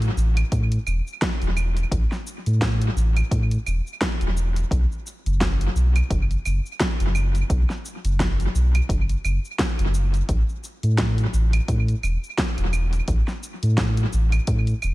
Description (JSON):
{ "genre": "sunset chillout", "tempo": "86 BPM", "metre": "4/4", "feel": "swing 56% on 16ths", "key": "unclear", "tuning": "A4 = 440 Hz", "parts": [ { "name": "warm sub bass", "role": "bass", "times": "0.0-14.9 s", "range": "E1 to A2", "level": "-20 LUFS", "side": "equal", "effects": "none" }, { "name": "deep house drum kit", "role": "drums", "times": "0.0-14.9 s", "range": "cabasa, claves, hi-hat, snare drum", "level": "-28 LUFS", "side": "equal", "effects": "small room reverb, tape echo" }, { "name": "electronic kick drum", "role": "drums", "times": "0.5-14.6 s", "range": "none", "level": "-26 LUFS", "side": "equal", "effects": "small room reverb" } ], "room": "little or no reverb", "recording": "echo-heavy mix", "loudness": "-20 LUFS", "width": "side -18 dB against mid", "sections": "0.0-14.9 A section", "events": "none", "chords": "none", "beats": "0.52 1.22 | 1.92 2.62 3.31 4.01 | 4.71 5.41 6.10 6.80 | 7.50 8.20 8.89 9.59 | 10.29 10.99 11.69 12.38 | 13.08 13.78 14.48" }